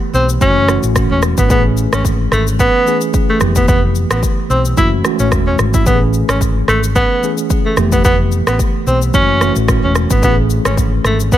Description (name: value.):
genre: afrobeats.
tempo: 110 BPM.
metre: 4/4.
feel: swing 55% on 16ths.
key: A major.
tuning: A4 = 440 Hz.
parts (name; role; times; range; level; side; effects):
mellow tine electric piano; accompaniment; 0.0-11.4 s; E3 to G#4; -19 LUFS; equal; medium stereo tremolo.
breathy tenor saxophone; melody; 0.1-11.4 s; A3 to E4; -16 LUFS; right 1 dB; tape echo.
hollow-body short-scale fingered electric bass; bass; 0.1-11.4 s; E1 to B1; -16 LUFS; equal; none.
afro-pop drum kit; drums; 0.1-11.4 s; kick drum, rim click, shaker; -16 LUFS; equal; none.
room: digital ambience.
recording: none.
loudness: -11 LUFS.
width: side -12 dB against mid.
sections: 0.0-11.4 A section.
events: none.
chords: 0.4 F#m7; 1.5 Amaj7; 3.4 Fmaj9#11; 4.8 F#m7; 5.9 Amaj7; 7.8 Fmaj9#11; 9.1 F#m7; 10.2 Amaj7.